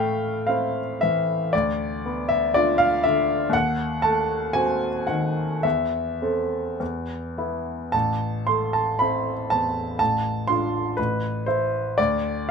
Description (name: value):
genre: classical, romantic character piece for solo piano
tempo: 52-62 BPM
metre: 2/4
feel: rubato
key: A minor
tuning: A4 = 440 Hz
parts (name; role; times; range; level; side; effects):
- clear grand piano; solo; 0.0-12.5 s; A1 to C6; -21 LUFS; equal; none
room: light reverb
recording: minimal, uncompressed stereo recording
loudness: -21 LUFS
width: side -5 dB against mid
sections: 0.0-12.5 A section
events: none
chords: 0.0 Am; 1.5 Bdim/D; 3.5 D#dim7; 5.6 Am/E; 6.8 E5; 7.9 Am; 10.0 Dm/A; 11.0 Am; 12.0 N.C.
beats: 0.47 | 1.53 2.54 | 3.53 4.55 | 5.65 6.80 | 7.94 9.00 | 10.00 10.98 | 11.98